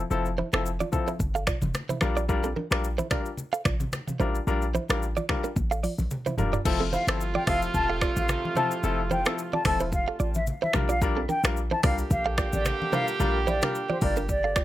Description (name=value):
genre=afrobeats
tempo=110 BPM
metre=4/4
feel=swing 55% on 16ths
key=F major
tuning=A4 = 438 Hz
part: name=warm 808-style bass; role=bass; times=0.0-14.6 s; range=E1 to C2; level=-29 LUFS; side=equal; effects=none
part: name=warm grand piano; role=accompaniment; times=0.1-14.2 s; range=F3 to Bb4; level=-30 LUFS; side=left 4 dB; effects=none
part: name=afro-pop drum kit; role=drums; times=0.1-14.6 s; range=crash cymbal, finger snaps, hi-hat, kick drum, rim click, shaker, toms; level=-28 LUFS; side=equal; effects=none
part: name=direct-recorded clean electric guitar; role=riff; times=0.4-14.6 s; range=C4 to F5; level=-31 LUFS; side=right 6 dB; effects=tape echo
part: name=congas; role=percussion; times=0.4-14.4 s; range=none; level=-35 LUFS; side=left 2 dB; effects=none
part: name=warm horn section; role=second line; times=6.7-14.6 s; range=C3 to G4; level=-31 LUFS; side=right 4 dB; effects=none
part: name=concert flute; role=melody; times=6.9-14.6 s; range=C5 to A5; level=-29 LUFS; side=left 1 dB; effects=none
room=light reverb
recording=none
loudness=-24 LUFS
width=side -14 dB against mid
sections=0.0-6.7 A section; 6.7-14.6 B section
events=drum fill 5.6-6.7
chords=0.0 Fmaj7; 2.0 Bb6; 6.7 Fmaj7; 10.7 Bb6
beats=| 0.11 0.65 1.20 1.75 | 2.29 2.84 3.38 3.93 | 4.47 5.02 5.56 6.11 | 6.65 7.20 7.75 8.29 | 8.84 9.38 9.93 10.47 | 11.02 11.56 12.11 12.65 | 13.20 13.74 14.29